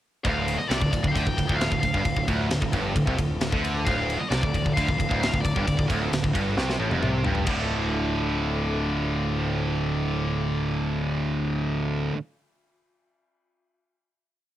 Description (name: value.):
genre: heavy metal.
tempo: 133 BPM.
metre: 4/4.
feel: straight.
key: D minor.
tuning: A4 = 437 Hz.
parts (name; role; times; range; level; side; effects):
high-gain lead guitar; melody; 0.2-5.8 s; D5 to G5; -30 LUFS; left 3 dB; distortion, cassette tape, tape echo.
analog string pad; sustained chords; 0.2-11.8 s; D3 to A4; -39 LUFS; left 1 dB; none.
biting overdriven guitar; riff; 0.2-12.2 s; D2 to D3; -33 LUFS; left 1 dB; cassette tape.
tight metal drum kit; drums; 0.2-7.6 s; crash cymbal, kick drum, ride cymbal, snare drum, toms; -28 LUFS; equal; cassette tape.
high-gain distorted guitar; riff; 0.3-12.2 s; D2 to D3; -27 LUFS; right 4 dB; distortion, cassette tape.
tight distorted guitar; riff; 0.3-12.2 s; D2 to D3; -33 LUFS; left 8 dB; distortion, cassette tape.
growling picked electric bass; bass; 0.3-12.1 s; D1 to D2; -30 LUFS; equal; overdrive.
room: little or no reverb.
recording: home recording on cassette.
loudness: -23 LUFS.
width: side -12 dB against mid.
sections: 0.3-7.5 riff; 7.5-11.1 final chord.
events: drum fill 6.6-7.5.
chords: 0.3 Dm.